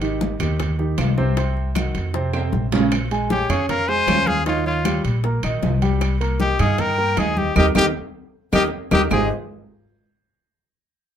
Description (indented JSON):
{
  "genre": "Afro-Cuban jazz",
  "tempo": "155 BPM",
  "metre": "4/4",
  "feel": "straight",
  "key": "Ab major",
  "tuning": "A4 = 440 Hz",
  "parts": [
    { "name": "warm upright piano", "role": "accompaniment", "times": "0.0-9.3 s", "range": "C3 to Eb6", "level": "-24 LUFS", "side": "right 2 dB", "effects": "none" },
    { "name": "upright bass", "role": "bass", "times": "0.0-9.3 s", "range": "Ab1 to G2", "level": "-22 LUFS", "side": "equal", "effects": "none" },
    { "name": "congas", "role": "percussion", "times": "0.0-9.2 s", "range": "none", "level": "-26 LUFS", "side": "equal", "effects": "none" },
    { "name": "timbales", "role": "percussion", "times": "0.0-9.2 s", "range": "none", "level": "-28 LUFS", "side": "right 5 dB", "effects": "none" },
    { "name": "bongos", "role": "percussion", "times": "0.2-9.2 s", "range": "none", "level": "-30 LUFS", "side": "left 5 dB", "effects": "none" },
    { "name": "claves", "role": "percussion", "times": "0.4-9.2 s", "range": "none", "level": "-31 LUFS", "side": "right 1 dB", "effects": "none" },
    { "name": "warm trumpet", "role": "melody", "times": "3.3-9.3 s", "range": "F4 to C5", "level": "-21 LUFS", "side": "left 2 dB", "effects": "none" },
    { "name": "breathy bright jazz flute", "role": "second line", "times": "3.3-9.3 s", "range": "Db5 to Ab5", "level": "-27 LUFS", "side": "left 2 dB", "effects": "none" }
  ],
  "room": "moderate club reverb, RT60 0.7 s",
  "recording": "minimal, uncompressed stereo recording",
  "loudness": "-18 LUFS",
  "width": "side -9 dB against mid",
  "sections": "0.0-2.9 A section; 2.9-9.1 B section; 9.1-10.7 C section",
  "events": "drum fill 2.3-2.9, 7.6-9.1; band accent 7.6-9.1",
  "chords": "0.0 Abmaj7; 1.4 Cdim; 2.1 F5; 2.9 Bbm9; 4.5 Eb7; 6.0 Cm7; 7.6 Eb; 9.1 Abmaj7"
}